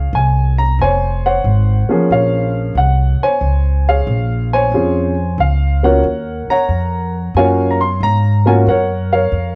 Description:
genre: jazz piano trio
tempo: 91 BPM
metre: 4/4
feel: swing 68% on 8ths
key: Bb minor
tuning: A4 = 439 Hz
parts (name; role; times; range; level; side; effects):
- warm baby grand piano; melody; 0.0-9.6 s; F3 to C6; -18 LUFS; equal; none
- upright bass; bass; 0.0-9.6 s; F1 to Ab2; -18 LUFS; equal; none
room: light reverb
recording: worn, warbling old tape, cassette tape, warbly pitch drift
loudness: -15 LUFS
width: mono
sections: 0.0-9.6 A section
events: none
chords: 0.0 Bbm9; 6.0 Ebm9

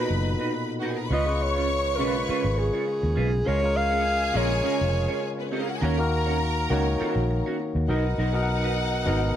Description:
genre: soul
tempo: 102 BPM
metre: 4/4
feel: swing 54% on 16ths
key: unclear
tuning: A4 = 440 Hz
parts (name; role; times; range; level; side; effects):
- clear studio string section; second line; 0.0-9.4 s; B3 to C#6; -31 LUFS; left 2 dB; none
- barky tine electric piano; accompaniment; 0.0-9.4 s; A#2 to F#5; -29 LUFS; left 2 dB; overdrive
- electric guitar through a small old amp; riff; 0.0-9.3 s; C#4 to C#5; -32 LUFS; right 6 dB; analog chorus
- vintage muted fingered electric bass; bass; 0.1-9.3 s; E#1 to D#2; -26 LUFS; equal; none
- breathy alto saxophone; melody; 1.1-5.5 s; G#4 to E#5; -27 LUFS; equal; slapback echo
room: light reverb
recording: none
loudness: -22 LUFS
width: side -10 dB against mid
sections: 0.0-9.4 A section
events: none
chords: 0.0 Bmaj7; 1.1 C#7; 3.5 A#m7; 5.8 D#m7; 7.9 Bmaj7

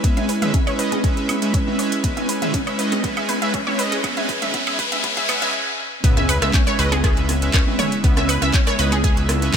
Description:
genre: progressive house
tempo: 120 BPM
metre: 4/4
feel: straight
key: C# minor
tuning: A4 = 440 Hz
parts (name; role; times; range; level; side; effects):
- airy breathy pad; sustained chords; 0.0-9.6 s; C#3 to B4; -29 LUFS; equal; chorus, sidechain pumping
- wide unison pluck; arpeggios; 0.0-9.6 s; B3 to E6; -25 LUFS; equal; sidechain pumping, digital delay
- soft supersaw; stabs; 0.0-9.6 s; G#3 to G#5; -23 LUFS; right 2 dB; sidechain pumping, digital delay
- electronic kick drum; drums; 0.0-9.6 s; none; -19 LUFS; equal; none
- house drum kit; drums; 0.0-9.6 s; handclaps, hi-hat, woodblock; -27 LUFS; right 2 dB; none
- riser, swell and sub drop; sound effects; 1.6-8.0 s; none; -28 LUFS; left 2 dB; none
- punchy analog drum machine; percussion; 0.2-9.6 s; congas, rim click, toms; -27 LUFS; right 1 dB; sidechain pumping on snare, sidechain pumping on perc, sidechain pumping on toms
- fat analog bass; bass; 6.0-9.6 s; C#2; -22 LUFS; equal; sidechain pumping
room: light reverb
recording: high-pass filter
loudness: -17 LUFS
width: side -7 dB against mid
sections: 0.0-6.0 A section; 6.0-9.6 B section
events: build-up 0.0-6.0; filter sweep on synth pluck 0.0-6.0; filter sweep on analog synth pad 0.0-6.0; filter sweep 0.0-6.0; riser 1.6-5.5; drum fill 2.0-5.5; swell 5.0-6.0; stop 5.5-6.0; drop 6.0-9.6; impact 6.0-8.0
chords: 0.0 C#m7

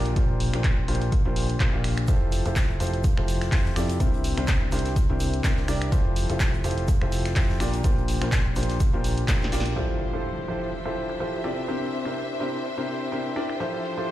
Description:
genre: piano house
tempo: 125 BPM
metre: 4/4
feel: swing 55% on 16ths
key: F major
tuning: A4 = 441 Hz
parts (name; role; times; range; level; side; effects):
- clear grand piano; riff; 0.0-14.1 s; Bb2 to F5; -28 LUFS; left 1 dB; sidechain pumping, low-pass filter, ping-pong delay
- fingered electric bass; bass; 0.0-9.7 s; F1 to F2; -28 LUFS; equal; sidechain pumping
- punchy analog drum machine; drums; 0.1-14.1 s; crash cymbal, finger snaps, handclaps, hi-hat, snare drum; -32 LUFS; equal; low-pass filter on snare, low-pass filter on hats, low-pass filter on cymbals
- electronic kick drum; drums; 0.2-9.4 s; none; -24 LUFS; equal; none
- jazz brush drum kit; drums; 2.1-14.1 s; hi-hat, shaker, snare drum; -41 LUFS; left 2 dB; sidechain pumping on hats, high-pass filter on hats, low-pass filter on hats, high-pass filter on snare, low-pass filter on snare, sidechain pumping on perc, high-pass filter on perc, low-pass filter on perc, high-pass filter on room, low-pass filter on room
- impact; sound effects; 9.8-11.7 s; none; -33 LUFS; equal; none
- bright studio string section; texture; 9.8-14.1 s; F3 to E5; -33 LUFS; equal; sidechain pumping
room: light reverb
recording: played on a big sound system in a bare room, large studio reverb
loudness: -22 LUFS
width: side -14 dB against mid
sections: 0.0-9.8 A section; 9.8-14.1 B section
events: drum fill 9.3-9.8; band accent 9.6; impact 9.8-11.7; filter sweep on grand piano 9.8-14.1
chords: 0.0 Bb69; 2.1 Fmaj9; 4.0 C9; 5.9 Fmaj9; 7.6 Bb69; 9.8 Fmaj9; 11.7 C9; 13.6 Fmaj9

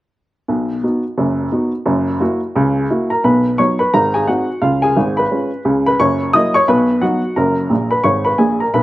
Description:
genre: jazz, stride piano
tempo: 175 BPM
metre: 4/4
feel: swing 60% on 8ths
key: B major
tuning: A4 = 438 Hz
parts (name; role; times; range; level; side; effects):
- warm upright piano; solo; 0.5-8.8 s; F#1 to D#6; -13 LUFS; equal; none
room: light reverb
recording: recorded outdoors, with no room sound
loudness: -13 LUFS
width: side -16 dB against mid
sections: 0.5-3.2 A section; 3.2-8.8 B section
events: upright piano fill 7.7-8.7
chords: 0.5 B; 1.9 F#7; 3.2 B; 3.9 G#7; 4.6 C#7; 6.0 F#7; 6.7 B; 7.4 F#

